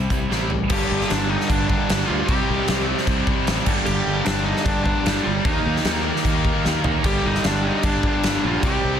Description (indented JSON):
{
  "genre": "hard rock",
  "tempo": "151 BPM",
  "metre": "4/4",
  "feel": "straight",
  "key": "G minor",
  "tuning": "A4 = 441 Hz",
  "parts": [
    { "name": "high-gain distorted guitar", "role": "riff", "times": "0.0-9.0 s", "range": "G2 to E4", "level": "-29 LUFS", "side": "right 2 dB", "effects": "distortion" },
    { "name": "overdriven semi-hollow guitar", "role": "riff", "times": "0.0-9.0 s", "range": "G2 to Eb4", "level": "-28 LUFS", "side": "right 11 dB", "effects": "none" },
    { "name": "tight distorted guitar", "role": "riff", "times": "0.0-9.0 s", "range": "G2 to Eb4", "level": "-26 LUFS", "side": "left 11 dB", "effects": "distortion" },
    { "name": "fingered electric bass", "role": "bass", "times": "0.0-9.0 s", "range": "G1 to Eb2", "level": "-26 LUFS", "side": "equal", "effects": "none" },
    { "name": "huge arena drum kit", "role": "drums", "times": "0.1-8.7 s", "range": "crash cymbal, hi-hat, kick drum, snare drum, splash cymbal, toms", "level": "-23 LUFS", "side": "equal", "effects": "none" },
    { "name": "smooth overdriven lead guitar", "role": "melody", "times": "0.7-9.0 s", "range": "D4 to G4", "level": "-26 LUFS", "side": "left 1 dB", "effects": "slapback echo, plate reverb" },
    { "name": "overdriven tonewheel organ", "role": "sustained chords", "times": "0.7-9.0 s", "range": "G3 to F5", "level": "-33 LUFS", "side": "equal", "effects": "none" }
  ],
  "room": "moderate studio reverb, RT60 0.6 s",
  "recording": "dense, heavily limited modern master",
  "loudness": "-18 LUFS",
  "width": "side -8 dB against mid",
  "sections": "0.7-9.0 A section",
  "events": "drum fill 0.3-0.7, 6.7-7.1",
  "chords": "0.0 C; 0.7 Gm; 2.3 Cm; 3.7 Gm; 5.5 Eb; 7.1 Gm"
}